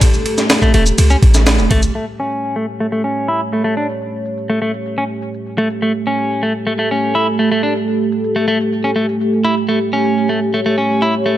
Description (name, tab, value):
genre	breakbeat, breaks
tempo	124 BPM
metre	4/4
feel	straight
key	unclear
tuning	A4 = 440 Hz
part	dark analog pad	sustained chords	0.0-11.4 s	A3 to C#5	-18 LUFS	right 1 dB	chorus, vintage 12-bit sampler grit, sidechain pumping
part	breakbeat sampler-style drum kit	drums	0.0-1.8 s	kick drum, ride cymbal, snare drum	-13 LUFS	equal	none
part	shaker	drums	0.0-11.4 s	none	-23 LUFS	equal	low-pass filter on perc
part	clean electric guitar	riff	0.6-11.4 s	A3 to E4	-18 LUFS	equal	vintage 12-bit sampler grit, low-pass filter, dub echo
part	warm 808-style bass	bass	0.7-1.9 s	E1 to C#2	-13 LUFS	equal	none
room	light reverb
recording	none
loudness	-13 LUFS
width	side -13 dB against mid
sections	0.0-2.0 A section; 2.0-11.4 B section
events	filter sweep on clean electric guitar 2.0-11.4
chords	0.0 A7